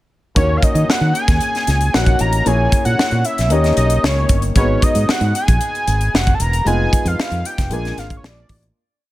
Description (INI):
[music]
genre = polished 1980s jazz-funk pop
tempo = 114 BPM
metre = 4/4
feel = straight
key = Eb minor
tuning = A4 = 440 Hz
[part]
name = fat analog lead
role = melody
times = 0.4-8.6 s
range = Db5 to Bb5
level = -20 LUFS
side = equal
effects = none
[part]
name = warm grand piano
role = accompaniment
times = 0.4-8.8 s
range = Ab3 to Db5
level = -22 LUFS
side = left 2 dB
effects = lush chorus
[part]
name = fingered electric bass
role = bass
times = 0.4-8.7 s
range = Fb1 to Eb3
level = -18 LUFS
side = equal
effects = none
[part]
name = crisp fusion drum kit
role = drums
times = 0.4-8.7 s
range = hi-hat, kick drum, snare drum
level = -18 LUFS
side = equal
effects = none
[sound]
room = small room reverb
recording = none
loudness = -14 LUFS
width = side -16 dB against mid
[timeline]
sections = 0.4-8.8 verse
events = fade-out 6.7-8.8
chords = 0.4 Ebm7; 2.5 Bbm7b5; 3.5 Eb7; 4.6 Abm7; 6.7 Fm7b5; 7.7 Bb7